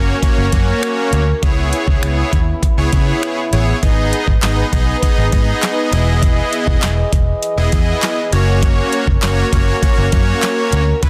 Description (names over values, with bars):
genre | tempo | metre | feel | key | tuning
dance-pop | 100 BPM | 4/4 | straight | unclear | A4 = 440 Hz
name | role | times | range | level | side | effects
big bright polysynth | accompaniment | 0.0-11.1 s | G#3 to D#5 | -21 LUFS | equal | sidechain pumping
clear French horn section | sustained chords | 0.0-11.1 s | C#3 to D#5 | -26 LUFS | equal | sidechain pumping
vintage muted fingered electric bass | bass | 0.0-11.1 s | E1 to C#3 | -19 LUFS | equal | sidechain pumping
smooth R&B drum kit | drums | 0.2-11.1 s | finger snaps, handclaps, hi-hat, kick drum, snare drum | -19 LUFS | equal | soft clipping on snare
room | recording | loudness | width
light reverb | dense, heavily limited modern master | -15 LUFS | mono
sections
0.0-11.1 A section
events
none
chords
0.0 F#; 1.4 C#m7; 3.8 G#m; 5.9 Emaj7; 8.3 F#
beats
0.23 0.83 | 1.43 2.03 2.63 3.23 | 3.83 4.43 5.03 5.63 | 6.23 6.83 7.43 8.03 | 8.63 9.23 9.83 10.43 | 11.03